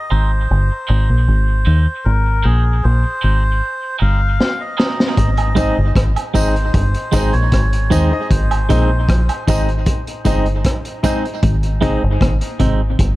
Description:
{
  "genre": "dub reggae",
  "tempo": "77 BPM",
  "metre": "4/4",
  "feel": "straight",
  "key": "Ab major",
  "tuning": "A4 = 441 Hz",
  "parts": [
    { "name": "melodica", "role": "melody", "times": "0.0-9.4 s", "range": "Ab4 to F5", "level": "-24 LUFS", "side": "left 1 dB", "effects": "dub echo" },
    { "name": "clean electric guitar", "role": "accompaniment", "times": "0.1-12.8 s", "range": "Ab3 to Eb4", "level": "-24 LUFS", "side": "right 6 dB", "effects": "high-pass filter, dub echo" },
    { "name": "deep dub fingered electric bass", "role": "bass", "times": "0.1-13.2 s", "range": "G1 to Eb2", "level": "-15 LUFS", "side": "equal", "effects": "none" },
    { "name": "crunchy breakbeat drum kit", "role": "drums", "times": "4.4-13.2 s", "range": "hi-hat, kick drum, rim click, snare drum", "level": "-18 LUFS", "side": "equal", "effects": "none" },
    { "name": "mellow electric guitar", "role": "arpeggios", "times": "5.2-5.3, 11.4-12.7 s", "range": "Ab2 to C3", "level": "-26 LUFS", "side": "left 4 dB", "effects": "dub echo" },
    { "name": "woodblock and tambourine", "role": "percussion", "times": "5.4-11.2 s", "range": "none", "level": "-28 LUFS", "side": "right 6 dB", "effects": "dub echo" },
    { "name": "clear concert grand piano", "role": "stabs", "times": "5.6-12.0 s", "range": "Eb4 to Eb5", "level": "-23 LUFS", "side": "left 4 dB", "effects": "dub echo" }
  ],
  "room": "studio reverb",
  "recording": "echo-heavy mix",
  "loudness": "-13 LUFS",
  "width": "side -18 dB against mid",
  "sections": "0.0-13.2 A section",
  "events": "break 0.0-5.2; drum fill 4.4-5.2; part muted 11.4-13.2",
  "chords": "0.0 Ab"
}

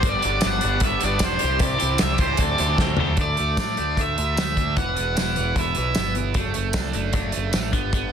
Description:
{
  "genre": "indie rock",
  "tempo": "152 BPM",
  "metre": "4/4",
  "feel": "straight",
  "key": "D mixolydian",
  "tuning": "A4 = 443 Hz",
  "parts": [
    { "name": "overdriven electric guitar", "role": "melody", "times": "0.0-6.1 s", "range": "C5 to F#5", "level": "-25 LUFS", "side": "equal", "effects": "none" },
    { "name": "glockenspiel with rubber mallets", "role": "second line", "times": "0.0-3.0 s", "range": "G#5 to D6", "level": "-36 LUFS", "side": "left 8 dB", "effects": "none" },
    { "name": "tonewheel organ", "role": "sustained chords", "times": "0.0-3.2 s", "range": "G4 to C6", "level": "-36 LUFS", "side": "left 1 dB", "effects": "none" },
    { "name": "clean electric guitar", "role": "riff", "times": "0.0-8.1 s", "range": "E2 to G4", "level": "-31 LUFS", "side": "left 12 dB", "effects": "phaser" },
    { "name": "overdriven electric guitar", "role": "riff", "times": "0.0-8.1 s", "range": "E3 to A4", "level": "-28 LUFS", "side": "right 10 dB", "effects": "lush chorus, analog delay" },
    { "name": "growling picked electric bass", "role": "bass", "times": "0.0-8.1 s", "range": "E1 to A2", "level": "-26 LUFS", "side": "equal", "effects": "overdrive" },
    { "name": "loose indie drum kit", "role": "drums", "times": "0.0-8.0 s", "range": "hi-hat, kick drum, snare drum, tambourine, toms", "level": "-24 LUFS", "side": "equal", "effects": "soft clipping on kick" }
  ],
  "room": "light reverb",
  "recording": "dense, heavily limited modern master",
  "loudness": "-20 LUFS",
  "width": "side -8 dB against mid",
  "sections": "0.0-3.2 A section; 3.2-8.1 B section",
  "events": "drum fill 2.8-3.2",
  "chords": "0.0 Gmaj7; 1.4 Cadd9; 2.4 D7sus4; 3.2 D5; 4.8 Em; 6.4 D/F#"
}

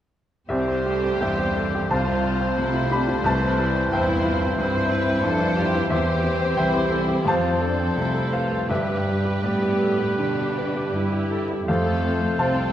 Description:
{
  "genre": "classical, romantic movement for piano and orchestra",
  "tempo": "79-92 BPM",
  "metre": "4/4",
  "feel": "rubato",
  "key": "C major",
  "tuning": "A4 = 439 Hz",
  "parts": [
    { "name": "bright baby grand piano", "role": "melody", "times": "0.5-12.7 s", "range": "C2 to B5", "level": "-23 LUFS", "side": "left 1 dB", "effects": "none" },
    { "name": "clear studio violin section", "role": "melody", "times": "0.5-12.7 s", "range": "A4 to C5", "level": "-35 LUFS", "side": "left 2 dB", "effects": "none" },
    { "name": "clear oboe", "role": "second line", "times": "0.5-12.7 s", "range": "B4 to C5", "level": "-31 LUFS", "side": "right 1 dB", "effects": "none" },
    { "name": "rich studio violin section", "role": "second line", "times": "0.5-12.7 s", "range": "D4 to A4", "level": "-32 LUFS", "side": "left 3 dB", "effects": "none" },
    { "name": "mellow bassoon", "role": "accompaniment", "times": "0.5-12.7 s", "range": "E3 to C4", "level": "-31 LUFS", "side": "right 1 dB", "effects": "none" },
    { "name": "rich studio viola section", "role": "accompaniment", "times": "0.5-12.7 s", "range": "G3 to E4", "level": "-30 LUFS", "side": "right 1 dB", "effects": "none" },
    { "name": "warm studio cello section", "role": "bass", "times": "0.5-12.7 s", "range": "C2 to C3", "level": "-28 LUFS", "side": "right 2 dB", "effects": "none" },
    { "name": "timpani", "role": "percussion", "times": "1.9-4.2, 8.7-9.8 s", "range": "G2 to C3", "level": "-34 LUFS", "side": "right 1 dB", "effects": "none" }
  ],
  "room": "wet concert hall reverb, RT60 2.4 s",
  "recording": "none",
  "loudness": "-20 LUFS",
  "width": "side -11 dB against mid",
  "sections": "0.5-12.7 A section",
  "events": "none",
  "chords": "0.5 C; 1.9 F/C; 3.3 C; 5.9 C/E; 7.3 F; 8.7 G; 11.7 F"
}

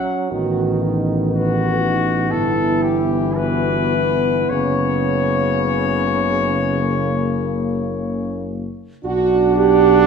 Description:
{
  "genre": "classical, hymn-like piece for brass band",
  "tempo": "51-61 BPM",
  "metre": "4/4",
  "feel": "rubato",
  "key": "unclear",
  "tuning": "A4 = 440 Hz",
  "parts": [
    { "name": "mellow cornet", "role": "melody", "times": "0.0-10.1 s", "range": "F#4 to F#5", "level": "-23 LUFS", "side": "left 7 dB", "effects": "none" },
    { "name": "mellow French horn section", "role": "second line", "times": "0.0-10.1 s", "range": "C#4 to B4", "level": "-21 LUFS", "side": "right 7 dB", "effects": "none" },
    { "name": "bright trombone", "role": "accompaniment", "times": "0.0-10.1 s", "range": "C#3 to D4", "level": "-24 LUFS", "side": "right 2 dB", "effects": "none" },
    { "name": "warm euphonium", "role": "accompaniment", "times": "0.0-10.1 s", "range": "A#3 to D4", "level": "-24 LUFS", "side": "left 4 dB", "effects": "none" },
    { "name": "dark tuba", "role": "bass", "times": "0.0-10.1 s", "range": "F#1 to B1", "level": "-22 LUFS", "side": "equal", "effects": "none" }
  ],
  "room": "wet recital hall reverb, RT60 1.4 s",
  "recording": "heard from further back in the room",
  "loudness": "-16 LUFS",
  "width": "side -6 dB against mid",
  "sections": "0.0-9.0 A section; 9.0-10.1 B section",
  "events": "none",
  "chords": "0.3 B7/A; 2.3 Em/G; 4.5 F#sus4; 6.8 F#; 9.0 Bm"
}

